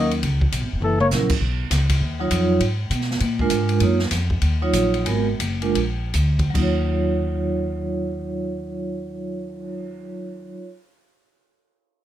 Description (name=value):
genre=jazz, small-group swing and bop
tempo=140-201 BPM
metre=4/4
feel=swing 62% on 8ths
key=Eb minor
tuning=A4 = 440 Hz
part: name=mellow flugelhorn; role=melody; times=0.0-1.1 s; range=A4 to Eb5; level=-21 LUFS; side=left 3 dB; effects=none
part: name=warm trombone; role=second line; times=0.0-1.1 s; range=Fb3 to Bb3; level=-26 LUFS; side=right 1 dB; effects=none
part: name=vibraphone with medium mallets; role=accompaniment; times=0.0-10.7 s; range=Gb3 to Db5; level=-23 LUFS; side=right 3 dB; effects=none
part: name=upright bass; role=bass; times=0.0-10.5 s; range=Fb1 to Cb3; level=-22 LUFS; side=equal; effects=none
part: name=open jazz drum kit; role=drums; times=0.1-9.9 s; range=crash cymbal, cymbal swell, hi-hat, kick drum, ride cymbal, snare drum, toms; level=-26 LUFS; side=equal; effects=none
room=light reverb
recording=close, detailed microphones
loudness=-19 LUFS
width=side -12 dB against mid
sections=0.0-1.4 A section; 1.4-6.5 B section; 6.5-10.0 C section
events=drum fill 0.8; slowing down 3.8-6.5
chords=0.2 Dbm7; 0.8 Gb7; 1.4 Bsus2; 2.0 Ebm9; 2.6 Abm; 3.2 Bb7; 3.8 Ebm9; 5.1 Abm9; 5.8 Bb; 6.5 Ebm9